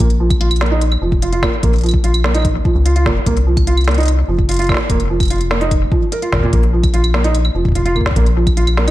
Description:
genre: IDM.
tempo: 147 BPM.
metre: 4/4.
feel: straight.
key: Bb minor.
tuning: A4 = 440 Hz.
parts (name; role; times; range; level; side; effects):
felt-muted upright piano; arpeggios; 0.0-8.9 s; Bb2 to Bb4; -19 LUFS; right 3 dB; low-pass filter, tape echo.
rubbery square bass; bass; 0.0-8.9 s; F1 to Db2; -15 LUFS; equal; none.
electronic kick drum; drums; 0.0-8.5 s; none; -17 LUFS; equal; none.
organic electronic drum kit; drums; 0.0-8.9 s; claves, hi-hat, snare drum; -22 LUFS; equal; ping-pong delay.
room: light reverb.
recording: dark, warm production, faint mains hum.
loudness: -12 LUFS.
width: side -15 dB against mid.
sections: 0.0-8.9 A section.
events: filter sweep on felt piano 0.0-8.9.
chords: 0.0 Bb5; 3.3 C(b5, no3); 4.9 N.C.; 6.5 Bb5.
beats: | 0.00 0.41 0.81 1.22 | 1.63 2.04 2.45 2.85 | 3.26 3.67 4.08 4.49 | 4.90 5.30 5.71 6.12 | 6.53 6.94 7.34 7.75 | 8.16 8.57.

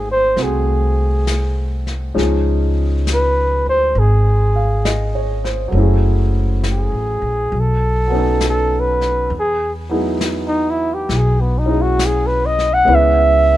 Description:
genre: jazz ballad.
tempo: 67 BPM.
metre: 4/4.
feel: swing 67% on 8ths.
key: unclear.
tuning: A4 = 439 Hz.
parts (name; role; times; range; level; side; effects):
mellow flugelhorn; melody; 0.0-13.6 s; B3 to F#5; -17 LUFS; equal; none.
warm upright piano; accompaniment; 0.0-13.6 s; F3 to F5; -22 LUFS; equal; none.
upright bass; bass; 0.0-13.6 s; Gb1 to E2; -17 LUFS; equal; none.
vintage brush drum kit; drums; 0.4-13.6 s; brushed snare drum, hi-hat, snare drum; -27 LUFS; left 3 dB; none.
room: little or no reverb.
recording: minimal, uncompressed stereo recording.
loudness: -14 LUFS.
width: side -14 dB against mid.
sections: 0.0-13.6 A section.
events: flugelhorn solo 0.0-13.6.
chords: 0.0 Ab7b9; 2.2 Dbadd9; 5.7 Gbm9; 7.5 B9; 9.3 Emaj9; 12.9 Dbm7.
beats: 0.37 1.26 | 2.16 3.05 3.95 4.84 | 5.73 6.62 7.52 8.41 | 9.30 10.19 11.08 11.97 | 12.87.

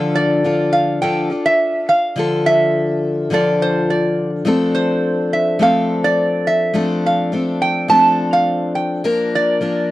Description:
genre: folk.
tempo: 104 BPM.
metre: 4/4.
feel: straight.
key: unclear.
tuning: A4 = 439 Hz.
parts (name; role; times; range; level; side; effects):
picked steel-string acoustic guitar; accompaniment; 0.0-9.9 s; D3 to Bb4; -18 LUFS; left 2 dB; none.
metal-body resonator slide guitar; melody; 0.2-9.9 s; C5 to A5; -16 LUFS; right 1 dB; none.
room: light reverb.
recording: dry, close 1970s-style studio recording.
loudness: -14 LUFS.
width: side -16 dB against mid.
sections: 0.0-9.9 A section.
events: none.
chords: 0.0 Dm; 4.5 F6; 9.1 Bb/F.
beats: 0.44 1.01 1.59 | 2.16 2.74 3.31 3.88 | 4.46 5.03 5.61 6.18 | 6.76 7.33 7.91 8.48 | 9.05 9.63.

